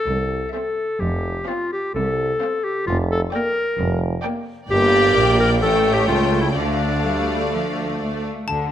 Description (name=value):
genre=cinematic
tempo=128 BPM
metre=4/4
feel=straight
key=D minor from 4.7 s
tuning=A4 = 440 Hz
part: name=warm clarinet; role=second line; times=0.0-8.0 s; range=D4 to Bb4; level=-21 LUFS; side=left 1 dB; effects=none
part: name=clear studio cello section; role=bass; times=0.1-8.7 s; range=C2 to A3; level=-27 LUFS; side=equal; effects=none
part: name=clear tuba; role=bass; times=0.1-8.3 s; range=F1 to D2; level=-27 LUFS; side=right 3 dB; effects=none
part: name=warm studio double bass section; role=bass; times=0.1-8.7 s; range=F1 to D2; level=-28 LUFS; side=right 2 dB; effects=none
part: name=warm studio violin section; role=melody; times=0.5-8.3 s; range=E5 to G5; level=-28 LUFS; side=left 5 dB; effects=none
part: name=warm studio violin section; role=second line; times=0.5-8.2 s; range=C5 to D5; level=-29 LUFS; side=left 1 dB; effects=none
part: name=rich studio viola section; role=accompaniment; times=0.5-8.2 s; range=A3 to C4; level=-25 LUFS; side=right 1 dB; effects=none
part: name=xylophone with plastic mallets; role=melody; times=8.5-8.7 s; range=A5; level=-23 LUFS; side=left 7 dB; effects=none
room=moderate scoring stage reverb, RT60 1.7 s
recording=none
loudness=-18 LUFS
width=side -10 dB against mid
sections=0.0-8.5 A section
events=none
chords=0.1 C; 1.0 F; 2.9 Gm7/F; 4.7 Gm; 5.6 A7; 6.6 Dm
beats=0.07 0.54 | 1.01 1.48 1.95 2.42 | 2.88 3.33 3.79 4.24 | 4.70 5.16 5.62 6.08 | 6.56 7.04 7.53 8.00 | 8.48